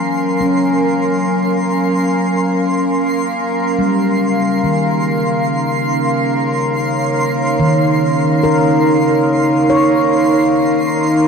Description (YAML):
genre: ambient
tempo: 71 BPM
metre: 4/4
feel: straight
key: unclear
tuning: A4 = 440 Hz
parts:
  - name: warbly tape-like pad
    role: sustained chords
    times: 0.0-11.3 s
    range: Db3 to Ab5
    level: -15 LUFS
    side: equal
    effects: chorus, built-in reverb, shimmer reverb
  - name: hand-pumped harmonium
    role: drone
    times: 0.0-11.3 s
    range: Bb3 to Bb4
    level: -22 LUFS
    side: right 2 dB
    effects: none
  - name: twinkling granular texture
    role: texture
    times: 0.0-11.3 s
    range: C6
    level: -23 LUFS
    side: equal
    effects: built-in reverb, shimmer reverb
  - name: handpan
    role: arpeggios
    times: 0.4-10.7 s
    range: Eb3 to Db5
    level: -18 LUFS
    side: left 1 dB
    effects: tape echo, shimmer reverb
room: wet huge ambient reverb, RT60 7.5 s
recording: in a vast, echoing space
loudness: -13 LUFS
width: side -6 dB against mid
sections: 0.0-11.3 A section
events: filter sweep on ambient pad 0.0-11.3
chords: 0.0 Gbmaj7; 3.8 Dbmaj7; 10.6 Ebm7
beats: | 0.41 1.26 2.10 2.95 | 3.79 4.64 5.48 6.33 | 7.17 8.02 8.86 9.71 | 10.55